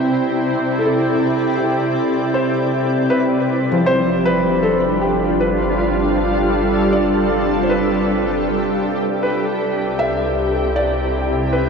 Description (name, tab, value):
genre	ambient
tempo	78 BPM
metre	4/4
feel	straight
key	unclear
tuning	A4 = 440 Hz
part	shimmering ambient pad	sustained chords	0.0-11.7 s	C3 to D5	-18 LUFS	right 1 dB	chorus, built-in reverb, shimmer reverb
part	concert harp	arpeggios	0.0-11.7 s	F3 to B5	-25 LUFS	equal	shimmer reverb, ping-pong delay
part	pedal harmonium	drone	0.0-11.7 s	C3 to G3	-26 LUFS	left 3 dB	stereo widening
part	glass harmonica	texture	0.0-3.1 s	G5 to G6	-33 LUFS	left 3 dB	shimmer reverb
part	felt-muted upright piano	melody	0.8-11.7 s	G4 to E5	-22 LUFS	equal	shimmer reverb, ping-pong delay
part	deep rumbling drone	bass	4.1-11.7 s	G1 to C2	-28 LUFS	equal	built-in reverb
room	wet huge ambient reverb, RT60 7.9 s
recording	worn, warbling old tape, cassette tape, warbly pitch drift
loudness	-15 LUFS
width	side -5 dB against mid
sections	0.0-3.1 A section; 3.1-11.7 B section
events	fade-out on synth drone 3.1-11.7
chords	0.0 C; 3.1 G7; 9.3 Cmaj7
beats	| 0.02 0.79 1.56 2.33 | 3.10 3.87 4.64 5.41 | 6.18 6.95 7.72 8.48 | 9.25 10.02 10.79 11.56